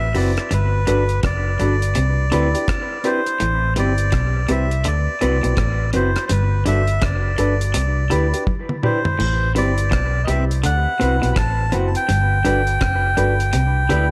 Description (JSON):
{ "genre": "lovers rock reggae", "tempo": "83 BPM", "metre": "4/4", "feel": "swing 61% on 16ths", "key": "G major", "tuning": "A4 = 439 Hz", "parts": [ { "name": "melodica", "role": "melody", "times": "0.0-14.1 s", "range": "B4 to B5", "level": "-25 LUFS", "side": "equal", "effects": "tape echo" }, { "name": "vintage muted fingered electric bass", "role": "bass", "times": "0.0-14.1 s", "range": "F#1 to D2", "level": "-22 LUFS", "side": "equal", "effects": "none" }, { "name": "dark concert grand piano", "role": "accompaniment", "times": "0.1-14.1 s", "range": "C4 to B4", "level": "-28 LUFS", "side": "equal", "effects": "none" }, { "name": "twangy electric guitar", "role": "riff", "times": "0.1-14.0 s", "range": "F#2 to D3", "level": "-30 LUFS", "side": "equal", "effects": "none" }, { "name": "mellow electric guitar", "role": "stabs", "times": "0.1-14.1 s", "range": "C4 to B4", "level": "-29 LUFS", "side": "equal", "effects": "spring reverb, dub echo" }, { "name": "deep reggae drum kit", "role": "drums", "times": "0.1-14.1 s", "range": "hi-hat, kick drum, rim click, splash cymbal, toms", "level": "-27 LUFS", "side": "equal", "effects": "gated reverb" } ], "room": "light reverb, small room reverb", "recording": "none", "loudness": "-19 LUFS", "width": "mono", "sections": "0.0-14.1 A section", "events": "drum fill 8.5-9.2", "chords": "0.0 D13; 0.5 Gmaj7; 2.0 Cmaj7; 3.4 Am9; 4.8 D13; 6.3 Gmaj7; 7.7 Cmaj7; 9.2 Am9; 10.6 D13; 12.1 Gmaj7; 13.5 Cmaj7" }